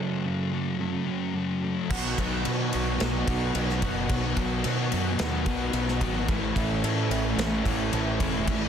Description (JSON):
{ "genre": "rock, shoegaze and dream pop", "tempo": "110 BPM", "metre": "4/4", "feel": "straight", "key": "B mixolydian", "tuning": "A4 = 438 Hz", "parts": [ { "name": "twelve-string electric guitar", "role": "arpeggios", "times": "0.0-8.7 s", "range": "E3 to A4", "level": "-38 LUFS", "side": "right 7 dB", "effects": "none" }, { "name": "crunchy overdriven guitar", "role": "riff", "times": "0.0-8.7 s", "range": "F#2 to F#4", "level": "-32 LUFS", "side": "right 8 dB", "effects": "reverse reverb" }, { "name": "thick fuzz guitar", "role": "riff", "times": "0.0-8.7 s", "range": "F#2 to C#4", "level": "-31 LUFS", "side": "left 9 dB", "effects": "distortion, analog chorus" }, { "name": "overdriven semi-hollow guitar", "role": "riff", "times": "1.9-8.7 s", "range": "A2 to F#4", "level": "-32 LUFS", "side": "left 1 dB", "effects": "none" }, { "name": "growling fingered electric bass", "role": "bass", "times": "1.9-8.7 s", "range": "E1 to B2", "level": "-30 LUFS", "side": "equal", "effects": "overdrive" }, { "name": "loose indie drum kit", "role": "drums", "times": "1.9-8.6 s", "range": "crash cymbal, kick drum, ride cymbal, snare drum", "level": "-30 LUFS", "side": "equal", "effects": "none" } ], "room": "small room ambience", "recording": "dense, heavily limited modern master", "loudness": "-24 LUFS", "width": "side -8 dB against mid", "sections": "0.0-1.9 A section; 1.9-8.7 B section", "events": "break 0.0-1.9", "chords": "0.0 F#m; 1.9 B; 6.3 Amaj7", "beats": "0.26 0.81 1.36 | 1.91 2.45 3.00 3.55 | 4.10 4.65 5.19 5.74 | 6.29 6.83 7.38 7.93 | 8.47" }